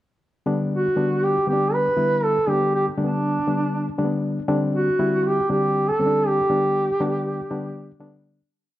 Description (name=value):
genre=soul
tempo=119 BPM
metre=4/4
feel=straight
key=G major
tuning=A4 = 440 Hz
part: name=barky reed electric piano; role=accompaniment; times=0.5-8.4 s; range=D3 to E4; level=-24 LUFS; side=left 2 dB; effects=overdrive
part: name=mellow duduk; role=melody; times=0.7-8.0 s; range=D4 to B4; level=-21 LUFS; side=right 1 dB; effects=none
room=moderate echo chamber reverb, RT60 2.0 s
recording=dark, warm production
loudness=-19 LUFS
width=side -14 dB against mid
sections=0.5-8.5 A section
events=fade-out 6.5-8.5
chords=0.5 G; 4.5 Csus2; 6.5 G